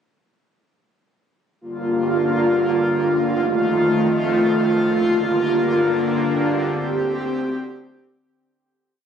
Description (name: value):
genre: hip hop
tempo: free time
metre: none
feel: none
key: G minor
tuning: A4 = 440 Hz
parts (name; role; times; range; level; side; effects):
- airy breathy pad; solo; 1.6-8.2 s; D2 to G4; -17 LUFS; equal; chorus, ping-pong delay
room: light reverb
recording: recorded on a phone in the room, club reverb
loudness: -17 LUFS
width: side -8 dB against mid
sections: 1.6-8.2 verse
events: fade-out 6.6-8.2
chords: 1.6 Gm7; 3.3 F7; 4.9 Gm7; 6.6 D7sus4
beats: free time